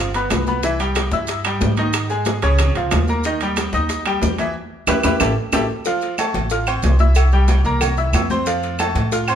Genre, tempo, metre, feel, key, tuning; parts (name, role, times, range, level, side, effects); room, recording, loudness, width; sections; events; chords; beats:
latin, salsa; 184 BPM; 4/4; straight; A4 = 441 Hz
bright upright piano; accompaniment; 0.0-9.4 s; C#3 to F6; -21 LUFS; equal
upright bass; bass; 0.0-9.4 s; G1 to A2; -19 LUFS; equal
bongos and cowbell; percussion; 0.1-9.3 s; -28 LUFS; left 3 dB
congas; percussion; 0.1-9.4 s; -28 LUFS; left 4 dB
maracas; percussion; 0.1-9.4 s; -33 LUFS; right 5 dB
timbales and agogo bells; percussion; 0.1-9.4 s; -25 LUFS; right 5 dB
claves; percussion; 0.3-9.4 s; -27 LUFS; right 3 dB
moderate large studio reverb, RT60 1.2 s; band playing live in one room; -16 LUFS; side -9 dB against mid
0.0-5.9 A section; 5.9-9.4 B section
band accent 4.6-5.9; drum fill 5.4-5.9
0.0 G7; 0.6 C; 1.9 G#5; 2.6 C#add9; 3.2 Eb; 4.6 Em; 5.2 A5; 5.9 Fmaj7; 7.2 C7; 8.5 F
0.31 | 0.64 0.96 1.29 1.61 | 1.94 2.27 2.59 2.92 | 3.25 3.57 3.90 4.22 | 4.55 4.88 5.20 5.53 | 5.86 6.18 6.51 6.83 | 7.16 7.49 7.81 8.14 | 8.47 8.79 9.12